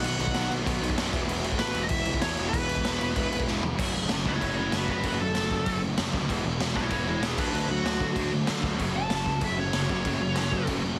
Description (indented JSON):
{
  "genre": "punk rock",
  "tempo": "192 BPM",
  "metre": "4/4",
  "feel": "straight",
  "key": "F# minor from 3.8 s",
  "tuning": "A4 = 439 Hz",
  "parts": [
    { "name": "smooth overdriven lead guitar", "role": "melody", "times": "0.0-10.7 s", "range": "D4 to A5", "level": "-33 LUFS", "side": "equal", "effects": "none" },
    { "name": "distorted electric guitar", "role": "riff", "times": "0.0-11.0 s", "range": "E2 to D4", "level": "-37 LUFS", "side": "equal", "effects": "overdrive" },
    { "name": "sludgy distorted guitar", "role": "riff", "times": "0.0-11.0 s", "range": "F#2 to E4", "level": "-37 LUFS", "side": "equal", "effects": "none" },
    { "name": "thick fuzz guitar", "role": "riff", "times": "0.0-11.0 s", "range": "B2 to F#4", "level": "-39 LUFS", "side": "equal", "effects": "none" },
    { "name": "fuzz picked electric bass", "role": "bass", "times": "0.0-11.0 s", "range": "E1 to D3", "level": "-35 LUFS", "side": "equal", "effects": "overdrive" },
    { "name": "raw garage drum kit", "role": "drums", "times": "0.0-10.8 s", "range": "crash cymbal, kick drum, snare drum, toms", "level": "-32 LUFS", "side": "equal", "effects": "none" }
  ],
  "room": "light reverb",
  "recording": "heavily compressed radio sound, multiband compression",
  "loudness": "-27 LUFS",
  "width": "mono",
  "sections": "0.0-3.8 A section; 3.8-11.0 B section",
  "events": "drum fill 3.5-3.8; lead electric guitar solo 3.8-11.0",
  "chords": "0.0 B; 1.1 E; 3.8 F#m; 6.3 E; 7.4 D; 8.8 F#m"
}